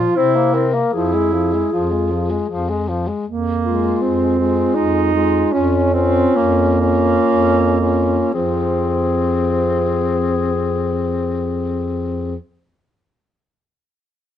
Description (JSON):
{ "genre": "classical, lyrical piece for single-reed quartet", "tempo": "55-81 BPM", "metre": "3/4", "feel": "rubato", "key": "F minor", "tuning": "A4 = 440 Hz", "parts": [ { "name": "clear alto saxophone", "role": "second line", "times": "0.0-12.4 s", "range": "F3 to F4", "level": "-19 LUFS", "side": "right 6 dB", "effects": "none" }, { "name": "mellow tenor saxophone", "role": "accompaniment", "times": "0.0-12.3 s", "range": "F3 to Db4", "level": "-20 LUFS", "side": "left 3 dB", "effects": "none" }, { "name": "dark bass clarinet", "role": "bass", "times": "0.0-12.3 s", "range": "F2 to C3", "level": "-23 LUFS", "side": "equal", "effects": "none" }, { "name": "clear clarinet", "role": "melody", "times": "0.2-12.3 s", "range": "F4 to C5", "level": "-21 LUFS", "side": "left 7 dB", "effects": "none" } ], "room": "light reverb", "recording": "nothing above 10.4 kHz", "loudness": "-15 LUFS", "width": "side -10 dB against mid", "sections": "0.0-3.3 A section; 3.3-8.3 B section; 8.3-14.4 C section", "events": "slowing down 2.1-8.3", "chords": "0.2 C7; 0.9 Fm; 5.5 Bbm/F; 8.3 Fm" }